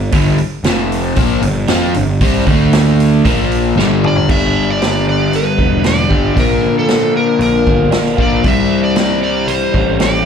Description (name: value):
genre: classic rock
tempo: 116 BPM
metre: 4/4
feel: straight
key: unclear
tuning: A4 = 444 Hz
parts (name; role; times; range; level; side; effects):
- crunchy overdriven guitar; riff; 0.0-10.3 s; F2 to F4; -17 LUFS; left 10 dB; slapback echo
- overdriven electric guitar; riff; 0.0-10.3 s; F2 to G4; -19 LUFS; right 13 dB; phaser, slapback echo
- fuzz picked electric bass; bass; 0.0-10.2 s; E1 to F2; -16 LUFS; right 1 dB; overdrive
- vintage drum kit; drums; 0.1-10.1 s; crash cymbal, hi-hat, kick drum, snare drum, toms; -18 LUFS; right 1 dB; none
- overdriven slide guitar; melody; 4.1-10.3 s; A4 to E5; -17 LUFS; left 1 dB; none
room: light reverb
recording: live gig heard through the venue's PA, club reverb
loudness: -11 LUFS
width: side -7 dB against mid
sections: 0.0-4.3 A section; 4.3-10.3 B section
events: drum fill 3.8-4.3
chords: 0.0 G5; 0.6 F5; 1.2 G5; 2.5 D5; 3.2 Bb5; 3.8 G5; 4.3 G; 6.4 Bb; 8.4 C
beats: | 0.13 0.65 1.17 1.69 | 2.21 2.72 3.24 3.76 | 4.28 4.80 5.32 5.84 | 6.36 6.88 7.40 7.92 | 8.44 8.96 9.48 9.99